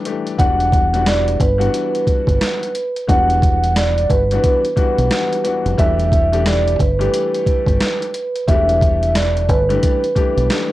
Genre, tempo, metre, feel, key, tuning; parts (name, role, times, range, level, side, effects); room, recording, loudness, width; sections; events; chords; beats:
hip hop, boom-bap hip-hop; 89 BPM; 4/4; swing 62% on 16ths; E minor; A4 = 440 Hz
warm baby grand piano; accompaniment; 0.0-10.7 s; E3 to G4; -23 LUFS; left 6 dB; high-pass filter, low-pass filter, cassette tape
boom bap sampler-style drum kit; drums; 0.1-10.7 s; hi-hat, kick drum, rim click, snare drum; -18 LUFS; equal; cassette tape
vibraphone with soft mallets; melody; 0.4-10.7 s; B4 to F#5; -18 LUFS; right 2 dB; high-pass filter, low-pass filter, cassette tape
deep dub fingered electric bass; bass; 0.4-10.5 s; E1 to B1; -18 LUFS; equal; tube saturation
light reverb; home recording on cassette; -14 LUFS; side -16 dB against mid
0.4-10.7 A section
break 0.0-0.4
0.4 Em9; 5.8 A7sus4/E
| 0.39 1.06 1.74 2.41 | 3.08 3.76 4.43 5.11 | 5.78 6.46 7.13 7.80 | 8.48 9.15 9.83 10.50